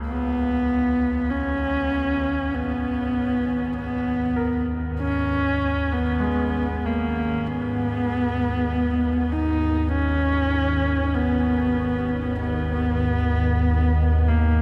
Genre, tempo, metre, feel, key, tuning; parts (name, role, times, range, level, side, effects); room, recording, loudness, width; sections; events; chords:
dark ambient drone; 49 BPM; 4/4; straight; G# minor; A4 = 440 Hz
clear concert grand piano; arpeggios; 0.0-14.6 s; C#2 to A#4; -36 LUFS; equal; diffuse ambient delay
organ-like drone; drone; 0.1-14.6 s; G#1 to D#2; -27 LUFS; equal; ensemble chorus, built-in reverb
dark horsehead fiddle; melody; 0.1-14.6 s; A#3 to D#4; -25 LUFS; equal; diffuse ambient delay
wet cathedral reverb, RT60 6.3 s; -23 LUFS; mono
0.0-14.6 A section
fade-in on synth drone 0.0-14.6
0.0 G#m